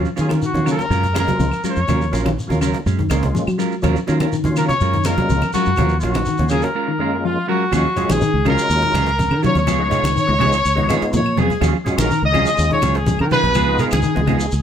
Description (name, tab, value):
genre	afrobeat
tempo	124 BPM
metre	4/4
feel	straight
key	Eb minor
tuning	A4 = 440 Hz
part	percussive tonewheel organ	accompaniment	0.0-14.5 s	Gb2 to Ab4	-25 LUFS	left 2 dB	slow rotary speaker, overdrive, chorus vibrato
part	mellow electric guitar	arpeggios	0.0-14.5 s	Db3 to Gb3	-24 LUFS	left 7 dB	none
part	clean electric guitar	stabs	0.0-14.4 s	Gb3 to Bb4	-24 LUFS	right 8 dB	none
part	fingered electric bass	bass	0.0-14.6 s	Bb1 to Gb3	-20 LUFS	equal	none
part	shekere	percussion	0.1-14.6 s	none	-29 LUFS	left 1 dB	none
part	warm trumpet	melody	0.2-14.6 s	F4 to Eb5	-20 LUFS	left 2 dB	plate reverb
part	cajon	drums	0.2-14.6 s	none	-30 LUFS	right 1 dB	none
part	claves	percussion	0.3-14.4 s	none	-35 LUFS	left 5 dB	none
part	congas	percussion	0.3-14.4 s	none	-25 LUFS	right 3 dB	none
part	edgy alto saxophone	second line	7.2-14.6 s	F4 to Eb5	-26 LUFS	right 4 dB	none
room	light reverb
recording	none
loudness	-15 LUFS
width	side -9 dB against mid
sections	0.0-7.7 A section; 7.7-14.6 B section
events	none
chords	0.0 Ebm9; 0.9 Gbmaj9; 1.9 Ebm9; 2.9 Gbmaj9; 3.8 Ebm9; 4.8 Gbmaj9; 5.8 Ebm9; 6.8 Gbmaj9; 7.7 Ebm11; 9.7 Db7; 11.6 Ebm11; 13.6 Db7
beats	0.42 0.91 1.40 | 1.89 2.38 2.86 3.35 | 3.84 4.33 4.81 5.30 | 5.79 6.27 6.76 7.25 | 7.73 8.22 8.70 9.19 | 9.67 10.16 10.64 11.13 | 11.61 12.10 12.58 13.07 | 13.55 14.04 14.52